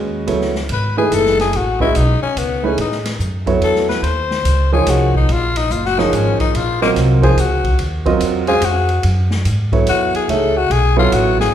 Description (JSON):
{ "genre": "modal jazz", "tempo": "144 BPM", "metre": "3/4", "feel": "swing 66% on 8ths", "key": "unclear", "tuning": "A4 = 439 Hz", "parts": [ { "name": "warm concert grand piano", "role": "accompaniment", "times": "0.0-11.5 s", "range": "Fb3 to F5", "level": "-18 LUFS", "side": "right 4 dB", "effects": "none" }, { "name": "upright bass", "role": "bass", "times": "0.0-11.5 s", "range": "Gb1 to A2", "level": "-18 LUFS", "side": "equal", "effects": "none" }, { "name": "swinging big-band drum kit", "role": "drums", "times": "0.3-11.5 s", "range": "hi-hat, kick drum, ride cymbal, snare drum", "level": "-24 LUFS", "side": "left 1 dB", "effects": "none" }, { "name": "growling tenor saxophone", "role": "second line", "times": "0.7-11.5 s", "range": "Bb3 to C5", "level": "-18 LUFS", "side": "left 6 dB", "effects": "none" } ], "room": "moderate recital hall reverb, RT60 1.8 s", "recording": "recorded in a church or concert hall", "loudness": "-13 LUFS", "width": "side -10 dB against mid", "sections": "0.0-11.5 A section", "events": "tenor saxophone solo 0.0-11.5", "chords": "0.0 Gbm11; 4.0 Ebm11; 9.0 Gbm11" }